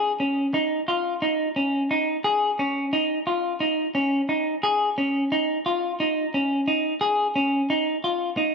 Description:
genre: progressive instrumental, progressive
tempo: 176 BPM (eighths)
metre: 7/8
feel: straight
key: unclear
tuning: A4 = 440 Hz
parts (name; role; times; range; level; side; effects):
- semi-hollow electric guitar; solo; 0.0-8.5 s; C#4 to G#4; -21 LUFS; equal; spring reverb
room: digital ambience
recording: dry, close 1970s-style studio recording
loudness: -21 LUFS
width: side -5 dB against mid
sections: 0.0-8.5 A section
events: none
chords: none

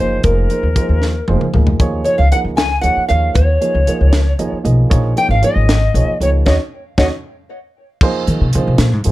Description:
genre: electric jazz fusion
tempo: 77 BPM (dotted quarters)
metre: 6/8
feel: straight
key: Eb minor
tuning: A4 = 440 Hz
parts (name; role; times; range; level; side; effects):
- nylon-string guitar; melody; 0.0-7.1 s; Bb4 to Ab5; -20 LUFS; right 1 dB; tape echo
- jazz flute; second line; 0.0-7.1 s; Bb4 to Ab5; -22 LUFS; left 4 dB; none
- dark baby grand piano; accompaniment; 0.0-9.1 s; F3 to Eb5; -21 LUFS; right 4 dB; none
- upright bass; bass; 0.0-9.1 s; F1 to Eb3; -14 LUFS; equal; none
- tight funk drum kit; drums; 0.2-9.1 s; crash cymbal, hi-hat, kick drum, snare drum, toms; -17 LUFS; equal; none
room: little or no reverb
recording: none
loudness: -12 LUFS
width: side -17 dB against mid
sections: 0.0-8.0 A section; 8.0-9.1 B section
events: drum fill 1.0-1.8, 7.2-8.0; grand piano fill 4.1-4.9; band accent 6.5-8.0; upright bass solo 8.0-9.1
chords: 0.2 Fm7; 1.8 Eb9sus4; 4.9 Bbm7; 6.5 Ebm7; 8.0 Ebsus4

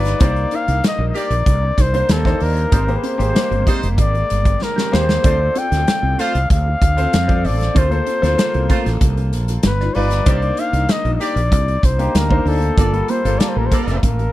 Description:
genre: polished 1980s jazz-funk pop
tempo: 95 BPM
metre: 4/4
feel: straight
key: unclear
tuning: A4 = 442 Hz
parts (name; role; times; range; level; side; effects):
- warm flugelhorn; melody; 0.0-14.3 s; A4 to G5; -21 LUFS; left 2 dB; none
- clear concert grand piano; accompaniment; 0.0-14.3 s; G3 to A5; -24 LUFS; left 2 dB; lush chorus
- mellow fretless electric bass; bass; 0.0-14.3 s; F1 to F2; -18 LUFS; equal; none
- modern studio drum kit; drums; 0.0-14.3 s; hi-hat, kick drum, snare drum; -18 LUFS; equal; none
- mellow electric guitar; riff; 0.1-14.2 s; Bb3 to Eb5; -28 LUFS; right 1 dB; analog chorus
- mellow horn section; second line; 0.2-14.0 s; G3 to D5; -25 LUFS; right 2 dB; none
room: small room ambience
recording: none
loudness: -14 LUFS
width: side -15 dB against mid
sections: 0.0-14.3 A section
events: drum fill 4.6-5.2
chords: 0.2 Cm9; 2.7 Abmaj9; 5.2 Dm7; 7.8 Bbmaj9; 9.6 G7b13; 10.3 Cm9; 12.8 Gm9

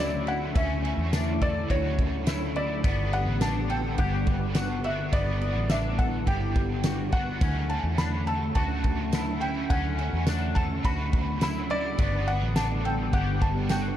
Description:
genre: dream pop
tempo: 105 BPM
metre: 4/4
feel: straight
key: D major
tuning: A4 = 440 Hz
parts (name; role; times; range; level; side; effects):
- felt-muted upright piano; melody; 0.0-14.0 s; C#5 to B5; -32 LUFS; equal; digital delay
- raw garage guitar; accompaniment; 0.0-14.0 s; D3 to F#4; -34 LUFS; right 3 dB; overdrive, harmonic tremolo, ensemble chorus
- hollow soft pad; sustained chords; 0.0-14.0 s; D3 to F#5; -33 LUFS; left 2 dB; chorus
- electric guitar with an envelope filter; arpeggios; 0.0-14.0 s; B3 to A4; -36 LUFS; left 5 dB; analog chorus, digital delay
- vintage muted fingered electric bass; bass; 0.0-14.0 s; G1 to E2; -30 LUFS; equal; none
- loose indie drum kit; drums; 0.3-13.8 s; kick drum, ride cymbal, snare drum, tambourine; -29 LUFS; equal; none
room: small room ambience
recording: dark, warm production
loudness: -24 LUFS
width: side -11 dB against mid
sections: 0.0-14.0 A section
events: none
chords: 0.0 Dmaj7; 2.8 Gmaj7; 7.4 Dmaj7; 12.0 Gmaj7

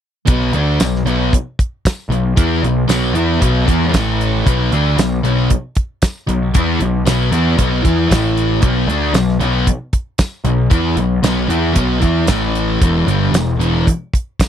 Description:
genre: classic rock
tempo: 115 BPM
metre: 4/4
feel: straight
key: unclear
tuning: A4 = 440 Hz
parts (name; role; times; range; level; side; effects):
- sludgy distorted guitar; riff; 0.3-13.8 s; E2 to E4; -16 LUFS; left 1 dB; overdrive
- fuzz picked electric bass; bass; 0.3-13.8 s; E1 to E2; -18 LUFS; equal; overdrive
- damped 70s drum kit; drums; 0.3-14.5 s; hi-hat, kick drum, snare drum, tambourine; -15 LUFS; right 1 dB; none
room: little or no reverb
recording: dry, close 1970s-style studio recording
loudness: -13 LUFS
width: side -9 dB against mid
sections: 0.3-14.5 A section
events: none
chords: 0.3 B5; 3.9 A5; 4.4 B5; 8.1 A5; 8.6 B5; 12.3 A5; 12.8 E5

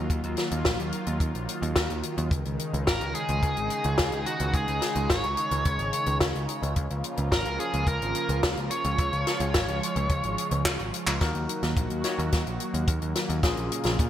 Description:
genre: synthwave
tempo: 108 BPM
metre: 4/4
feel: straight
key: unclear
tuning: A4 = 442 Hz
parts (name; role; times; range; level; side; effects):
- lush unison pad; sustained chords; 0.0-14.1 s; Db3 to Gb4; -33 LUFS; right 1 dB; chorus, phaser, sidechain pumping
- picked electric bass; bass; 0.0-14.1 s; Ab1 to Bb2; -30 LUFS; equal; sidechain pumping
- compact cocktail drum kit; drums; 0.1-14.1 s; handclaps, hi-hat, snare drum; -30 LUFS; left 1 dB; gated reverb
- kick drum; drums; 0.1-14.1 s; none; -27 LUFS; equal; none
- smooth overdriven lead guitar; melody; 2.9-10.6 s; Gb4 to Db5; -30 LUFS; equal; digital delay
- overdriven tine electric piano; stabs; 11.2-14.1 s; Bb2 to Db5; -34 LUFS; left 3 dB; digital delay
room: moderate plate reverb, RT60 3.1 s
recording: bright 1980s-style digital production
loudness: -24 LUFS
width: side -11 dB against mid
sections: 0.0-11.2 A section; 11.2-14.1 B section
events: drum fill 10.7-11.2, 11.2-14.1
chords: 0.0 Ebmadd9; 2.3 Dbsus2; 6.8 Bbm; 11.2 Ebm; 13.4 Bbm7

